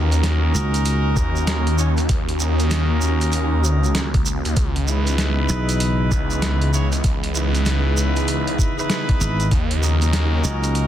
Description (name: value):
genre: glitch hop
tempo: 97 BPM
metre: 4/4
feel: swing 63% on 16ths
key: unclear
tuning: A4 = 440 Hz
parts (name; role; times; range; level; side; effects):
- warbly tape-like pad; sustained chords; 0.0-10.9 s; C#3 to D#5; -28 LUFS; right 1 dB; chorus, built-in reverb, sidechain pumping
- warm horn section; stabs; 0.0-10.9 s; C#4 to C#5; -26 LUFS; equal; sidechain pumping, tape echo
- phased detuned saw bass; bass; 0.0-10.4 s; C#2 to D#2; -19 LUFS; equal; phaser
- boom bap sampler-style drum kit; drums; 0.1-10.9 s; hi-hat, rim click, snare drum; -26 LUFS; equal; studio ambience
- shekere; percussion; 0.1-10.9 s; none; -30 LUFS; right 4 dB; none
- slap bass; bass; 0.5-1.1, 5.5-10.9 s; G#1 to C#2; -20 LUFS; equal; none
- electronic kick drum; drums; 1.2-9.7 s; none; -20 LUFS; equal; studio ambience
room: little or no reverb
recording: dense, heavily limited modern master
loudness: -17 LUFS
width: side -11 dB against mid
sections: 0.0-10.9 A section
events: none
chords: 0.0 D#m7; 4.6 C#m9; 9.5 D#m7